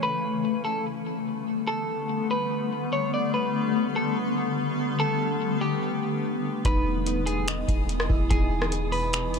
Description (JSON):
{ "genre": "hip hop, atmospheric cloud-rap", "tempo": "145 BPM", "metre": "4/4", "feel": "half-time", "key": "unclear", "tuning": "A4 = 440 Hz", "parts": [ { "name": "clean electric guitar", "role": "melody", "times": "0.0-9.4 s", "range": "G4 to D5", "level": "-30 LUFS", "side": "equal", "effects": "lush chorus, ping-pong delay" }, { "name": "granular cloud pad", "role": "sustained chords", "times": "0.0-9.4 s", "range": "B2 to B3", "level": "-27 LUFS", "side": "left 3 dB", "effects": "built-in reverb, sidechain pumping" }, { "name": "glassy digital keys", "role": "arpeggios", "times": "0.0, 6.7-9.4 s", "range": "D#4 to D#5", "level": "-34 LUFS", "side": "right 3 dB", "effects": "chorus, ping-pong delay" }, { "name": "booming analog drum machine", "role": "drums", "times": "6.6-9.4 s", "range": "finger snaps, hi-hat, kick drum, rim click", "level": "-26 LUFS", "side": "equal", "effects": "none" }, { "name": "wind-like tuned noise texture", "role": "texture", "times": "7.2-9.4 s", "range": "E4 to D#6", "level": "-42 LUFS", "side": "equal", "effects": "built-in reverb" }, { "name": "warm 808-style bass", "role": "bass", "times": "6.7-9.4 s", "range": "E1", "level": "-29 LUFS", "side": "equal", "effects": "none" } ], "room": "light reverb", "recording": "none", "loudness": "-24 LUFS", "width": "side -6 dB against mid", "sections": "0.0-9.4 A section", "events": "none", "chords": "0.0 Gadd9; 6.7 Emaj7" }